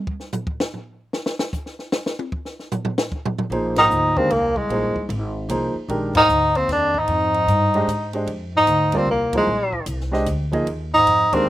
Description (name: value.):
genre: modal jazz.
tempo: 151 BPM.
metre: 3/4.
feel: swing 65% on 8ths.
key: Bb mixolydian from 3.5 s.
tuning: A4 = 440 Hz.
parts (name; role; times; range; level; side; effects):
compact cocktail drum kit; drums; 0.1-11.4 s; hi-hat, kick drum, ride cymbal, snare drum, toms; -26 LUFS; equal; none.
warm grand piano; accompaniment; 3.5-11.5 s; Eb3 to Eb5; -23 LUFS; right 1 dB; none.
upright bass; bass; 3.5-11.5 s; Ab1 to Ab2; -26 LUFS; equal; none.
warm tenor saxophone; melody; 3.8-11.5 s; Ab3 to Eb4; -17 LUFS; equal; none.
breathy bass clarinet; second line; 3.8-11.5 s; C2 to Ab2; -27 LUFS; left 1 dB; none.
room: little or no reverb.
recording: recorded outdoors, with no room sound.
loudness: -18 LUFS.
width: side -14 dB against mid.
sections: 0.0-3.5 A section; 3.5-11.5 B section.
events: drum solo 0.0-3.5; band accent 3.7, 6.1, 9.3.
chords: 0.0 N.C.; 3.5 Bb9sus4.